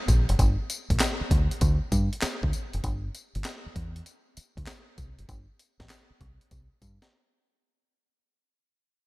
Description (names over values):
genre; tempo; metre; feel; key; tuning
R&B, new jack swing; 98 BPM; 4/4; swing 67% on 16ths; unclear; A4 = 440 Hz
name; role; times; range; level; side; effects
deep dub fingered electric bass; bass; 0.1-7.0 s; F#1 to G2; -26 LUFS; equal; none
breakbeat sampler-style drum kit; drums; 0.1-7.1 s; handclaps, hi-hat, kick drum, snare drum, tambourine; -27 LUFS; equal; none
room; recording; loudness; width
little or no reverb; none; -24 LUFS; side -21 dB against mid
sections
0.0-7.7 A section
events
fade-out 0.0-7.7; break 7.1-7.7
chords
none